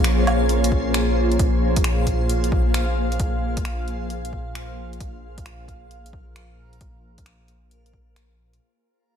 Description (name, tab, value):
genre	future garage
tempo	133 BPM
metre	4/4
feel	swing 65% on 16ths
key	Bb minor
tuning	A4 = 440 Hz
part	granular cloud pad	sustained chords	0.0-8.6 s	Bb3 to F5	-25 LUFS	left 1 dB	built-in reverb, sidechain pumping
part	dark detuned saw bass	bass	0.0-8.6 s	Bb1	-24 LUFS	equal	sidechain pumping
part	deep house drum kit	drums	0.0-8.6 s	finger snaps, hi-hat, woodblock	-28 LUFS	right 1 dB	studio reverb
part	backwards swelling texture	texture	0.0-8.6 s	Db4 to F5	-31 LUFS	right 2 dB	built-in reverb
part	electronic kick drum	drums	0.7-8.1 s	none	-24 LUFS	equal	studio reverb
room	light reverb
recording	none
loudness	-19 LUFS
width	side -8 dB against mid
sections	0.0-8.6 A section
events	fade-out 0.0-8.6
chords	0.0 Bbm7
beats	0.04 0.49 0.94 | 1.39 1.84 2.29 2.75 | 3.20 3.65 4.10 4.55 | 5.00 5.45 5.90 6.35 | 6.80 7.26 7.71 8.16